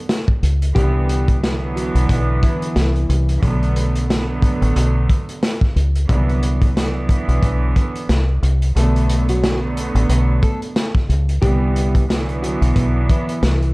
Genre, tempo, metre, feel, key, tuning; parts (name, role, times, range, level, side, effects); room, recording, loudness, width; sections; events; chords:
hip hop, boom-bap hip-hop; 90 BPM; 4/4; swing 57% on 16ths; A4 = 440 Hz
warm studio string section; accompaniment; 0.0-13.7 s; D3 to B3; -23 LUFS; right 2 dB; cassette tape, high-pass filter, low-pass filter
crunchy breakbeat drum kit; drums; 0.1-13.7 s; hi-hat, kick drum, snare drum; -19 LUFS; equal
deep dub fingered electric bass; bass; 0.4-13.7 s; A1 to C#2; -17 LUFS; equal
nylon-string guitar; melody; 0.8-3.4, 8.8-13.7 s; E3 to A4; -26 LUFS; left 1 dB; high-pass filter, low-pass filter, tape echo
light reverb; dark, warm production; -15 LUFS; side -23 dB against mid
0.0-13.7 A section
kick muted 8.8-10.1
0.0 Bm7; 0.8 Cmaj9#11; 3.4 Bm7; 6.1 Cmaj9#11; 8.8 Bm7; 11.4 Cmaj9#11